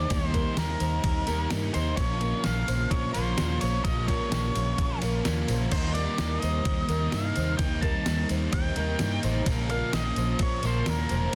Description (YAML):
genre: rock, shoegaze and dream pop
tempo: 128 BPM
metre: 4/4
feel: straight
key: unclear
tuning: A4 = 444 Hz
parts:
  - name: octave-fuzz lead guitar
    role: melody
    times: 0.0-11.3 s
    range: Bb4 to A5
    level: -35 LUFS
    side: equal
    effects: distortion, digital delay
  - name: string machine, cellos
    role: sustained chords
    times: 0.0-11.3 s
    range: C3 to C5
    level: -40 LUFS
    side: equal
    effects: none
  - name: fingerpicked twelve-string acoustic guitar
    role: arpeggios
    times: 0.0-11.3 s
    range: Bb4 to Db5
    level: -40 LUFS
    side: equal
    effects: analog chorus, digital delay
  - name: biting overdriven guitar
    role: riff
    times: 0.0-11.3 s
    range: Bb2 to G4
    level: -38 LUFS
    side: equal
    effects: reverse reverb
  - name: thick fuzz guitar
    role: riff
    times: 0.0-11.3 s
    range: Bb2 to Eb4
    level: -37 LUFS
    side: equal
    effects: distortion, lush chorus
  - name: vintage muted fingered electric bass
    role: bass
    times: 0.0-11.3 s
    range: E1 to G2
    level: -32 LUFS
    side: equal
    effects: none
  - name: detuned 8-bit digital drum machine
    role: drums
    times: 0.1-11.2 s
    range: crash cymbal, kick drum, ride cymbal, snare drum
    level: -33 LUFS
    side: equal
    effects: none
  - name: tambourine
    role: percussion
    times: 0.1-11.2 s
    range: none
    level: -49 LUFS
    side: equal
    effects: none
room: little or no reverb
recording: dense, heavily limited modern master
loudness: -27 LUFS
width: mono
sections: 0.0-11.3 A section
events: none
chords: 0.0 Eb6; 2.0 Bbm; 5.7 Eb6; 9.5 Bbm